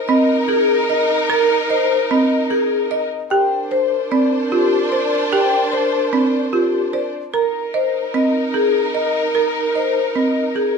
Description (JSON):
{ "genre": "classical, minimalist pattern music", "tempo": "149 BPM", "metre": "5/4", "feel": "straight", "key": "unclear", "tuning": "A4 = 440 Hz", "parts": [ { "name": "mellow hollow alto flute", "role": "second line", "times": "0.0-10.8 s", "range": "Bb4", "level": "-24 LUFS", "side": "right 4 dB", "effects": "none" }, { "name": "warm studio string section", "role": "sustained chords", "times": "0.0-10.8 s", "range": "D4 to C5", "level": "-23 LUFS", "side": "equal", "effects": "none" }, { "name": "vibraphone with medium mallets", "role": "melody", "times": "0.1-10.8 s", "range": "G4 to Bb5", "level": "-20 LUFS", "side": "left 9 dB", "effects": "none" }, { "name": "folk marimba with medium hard mallets", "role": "arpeggios", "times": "0.1-10.8 s", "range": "C4 to Eb5", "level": "-19 LUFS", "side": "right 5 dB", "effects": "none" } ], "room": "light reverb", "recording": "none", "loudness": "-15 LUFS", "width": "side -5 dB against mid", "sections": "0.0-10.8 A section", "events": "none", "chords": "0.0 Absus2; 3.3 Bbadd9; 7.3 Absus2", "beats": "0.09 0.49 0.89 | 1.30 1.70 2.10 2.50 2.91 | 3.31 3.71 4.12 4.52 4.92 | 5.32 5.73 6.13 6.53 6.93 | 7.34 7.74 8.14 8.54 8.95 | 9.35 9.75 10.15 10.56" }